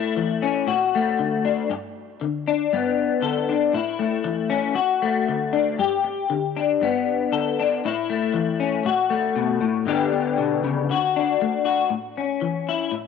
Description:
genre	highlife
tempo	118 BPM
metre	4/4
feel	straight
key	A mixolydian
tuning	A4 = 443 Hz
part	electric guitar through a small old amp	solo	0.0-13.1 s	G2 to A4	-20 LUFS	left 7 dB	analog chorus
room	moderate plate reverb, RT60 3.0 s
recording	none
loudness	-20 LUFS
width	side -6 dB against mid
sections	0.0-11.9 A section; 11.9-13.1 B section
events	none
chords	0.0 A; 0.7 D/A; 1.7 G; 3.7 A; 4.8 D/A; 5.8 G; 7.8 A; 8.8 F#madd11/A; 9.9 G; 10.9 D; 11.9 A

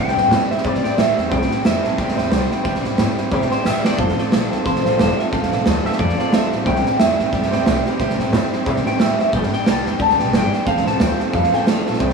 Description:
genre	rockabilly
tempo	180 BPM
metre	4/4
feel	swing 58% on 8ths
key	C major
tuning	A4 = 440 Hz
part	electric guitar through a small old amp	melody	0.0-12.1 s	C5 to A5	-21 LUFS	equal	phaser, plate reverb, analog delay
part	dark upright piano	accompaniment	0.0-12.1 s	B4 to A5	-27 LUFS	right 8 dB	plate reverb
part	picked steel-string acoustic guitar	accompaniment	0.0-12.1 s	G2 to A4	-25 LUFS	left 5 dB	plate reverb
part	upright bass	bass	0.0-12.1 s	F1 to C3	-24 LUFS	equal	none
part	raw garage drum kit	drums	0.1-12.1 s	hi-hat, kick drum, snare drum	-19 LUFS	right 2 dB	none
room	moderate studio reverb, RT60 0.8 s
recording	small room ambience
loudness	-16 LUFS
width	side -5 dB against mid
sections	0.0-12.1 A section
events	drum fill 3.7-4.0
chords	0.0 C; 4.0 F; 6.7 C; 9.3 G; 10.7 F

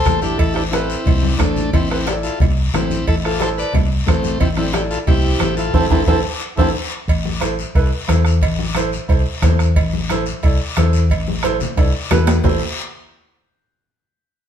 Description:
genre	latin, cumbia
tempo	179 BPM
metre	4/4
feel	straight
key	A minor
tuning	A4 = 439 Hz
part	overdriven combo organ	melody	0.0-6.7 s	A3 to D5	-22 LUFS	left 1 dB	none
part	mellow accordion	second line	0.0-6.7 s	A3 to A4	-27 LUFS	equal	none
part	clear upright piano	accompaniment	0.1-12.6 s	E4 to D5	-24 LUFS	right 4 dB	none
part	vintage muted fingered electric bass	bass	0.1-12.6 s	A1 to E2	-19 LUFS	left 1 dB	none
part	bombo	percussion	0.1-12.5 s	none	-19 LUFS	right 1 dB	none
part	congas	percussion	0.1-12.5 s	none	-25 LUFS	left 6 dB	none
part	guiro	percussion	0.1-12.5 s	none	-29 LUFS	left 5 dB	none
part	cowbell and timbales	percussion	0.4-12.5 s	none	-26 LUFS	right 4 dB	none
room	moderate stone room reverb, RT60 1.0 s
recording	band playing live in one room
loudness	-15 LUFS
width	side -9 dB against mid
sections	0.0-7.1 A section; 7.1-12.4 B section; 12.4-13.8 C section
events	drum fill 1.2-1.7, 5.8-7.1, 11.8-12.4; band accent 5.8-7.1; upright piano fill 6.4-7.1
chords	0.0 Am

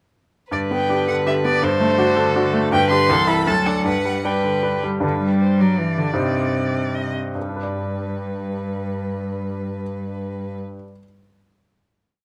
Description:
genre	quick classical-period movement for piano quartet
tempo	142-165 BPM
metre	3/4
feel	straight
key	G major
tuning	A4 = 440 Hz
part	rich violin	melody	0.5-10.6 s	B4 to C6	-27 LUFS	equal	none
part	clear violin	second line	0.5-4.8 s	A4 to B4	-26 LUFS	equal	none
part	rich cello	second line	0.5-10.6 s	G2 to G3	-27 LUFS	equal	none
part	bright baby grand piano	accompaniment	0.5-11.0 s	C2 to D5	-25 LUFS	equal	none
room	light reverb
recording	close, detailed microphones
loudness	-21 LUFS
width	mono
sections	0.5-5.0 A section; 5.0-7.4 coda; 7.4-9.8 final chord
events	slowing down 4.4-7.4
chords	0.5 G; 1.6 D7/G; 2.7 G; 3.1 Am/C; 3.5 D; 3.9 G; 6.2 Cm/G; 7.4 G

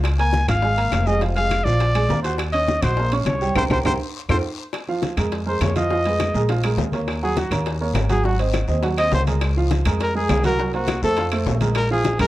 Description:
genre	Afro-Cuban jazz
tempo	205 BPM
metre	4/4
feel	straight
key	Bb minor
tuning	A4 = 440 Hz
part	warm baby grand piano	accompaniment	0.0-12.3 s	F3 to Gb6	-24 LUFS	right 3 dB	none
part	upright bass	bass	0.0-12.3 s	F1 to F2	-22 LUFS	equal	none
part	bongos	percussion	0.0-12.2 s	none	-30 LUFS	left 6 dB	none
part	claves	percussion	0.0-12.3 s	none	-34 LUFS	left 5 dB	none
part	congas	percussion	0.0-12.3 s	none	-28 LUFS	left 2 dB	none
part	guiro	percussion	0.0-12.3 s	none	-39 LUFS	left 8 dB	none
part	timbales	percussion	0.1-12.3 s	none	-32 LUFS	right 4 dB	none
part	warm trumpet	melody	0.2-12.3 s	Gb4 to Ab5	-23 LUFS	left 1 dB	tape echo
room	light reverb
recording	worn, warbling old tape, cassette tape, warbly pitch drift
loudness	-18 LUFS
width	side -15 dB against mid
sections	0.0-4.7 A section; 4.7-12.3 B section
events	drum fill 3.6-4.7; band accent 3.6-4.7; trumpet solo 4.7-12.3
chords	0.0 Db6; 1.2 Fmadd11; 1.8 Bb7; 2.4 Ebm7; 3.6 C5; 4.1 F; 4.7 Bb5; 5.9 Fm7b5; 6.5 Bb5; 7.1 Ebm7; 8.2 Ab9; 9.4 Db6; 10.6 Gbmaj7#11/C; 11.2 F; 11.8 Bb5

